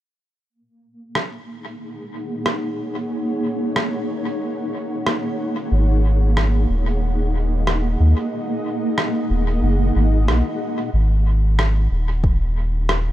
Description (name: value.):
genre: ambient dub.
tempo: 92 BPM.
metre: 4/4.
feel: straight.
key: unclear.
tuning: A4 = 440 Hz.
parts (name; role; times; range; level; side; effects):
granular cloud pad; sustained chords; 1.1-13.1 s; A#3 to F#5; -24 LUFS; equal; built-in reverb.
electronic rim click; drums; 1.2-13.0 s; none; -25 LUFS; equal; dub echo.
soft dub sub bass; bass; 5.7-13.1 s; D#1 to D#2; -17 LUFS; equal; none.
electronic kick drum; drums; 12.2-12.4 s; none; -18 LUFS; equal; overdrive.
room: little or no reverb.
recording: none.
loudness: -18 LUFS.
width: side -14 dB against mid.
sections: 0.5-10.9 A section; 10.9-13.1 B section.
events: none.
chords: 0.5 G#7sus2.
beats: | 0.50 1.15 1.80 2.46 | 3.11 3.76 4.41 5.07 | 5.72 6.37 7.02 7.67 | 8.33 8.98 9.63 10.28 | 10.94 11.59 12.24 12.89.